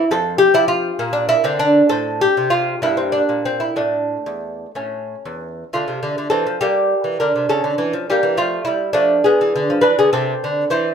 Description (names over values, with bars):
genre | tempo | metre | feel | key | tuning
classical, baroque-style dance for lute | 61-70 BPM (dotted quarters) | 6/8 | rubato | unclear | A4 = 440 Hz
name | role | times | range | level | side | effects
lute | solo | 0.0-10.9 s | E2 to C5 | -16 LUFS | equal | none
room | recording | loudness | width
moderate studio reverb, RT60 0.5 s | none | -15 LUFS | side -7 dB against mid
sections
0.0-5.7 A section; 5.7-10.9 B section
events
none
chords
0.1 F5; 1.0 Bb; 1.9 Am7; 2.8 Gm; 3.8 Asus4; 4.8 A; 5.7 Dm; 6.6 Edim/G; 7.5 A7/C#; 8.4 Fmaj13; 9.2 E7; 10.1 Am/C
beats
| 0.11 1.00 | 1.91 2.83 | 3.78 4.76 | 5.72 6.62 | 7.50 8.37 | 9.25 10.12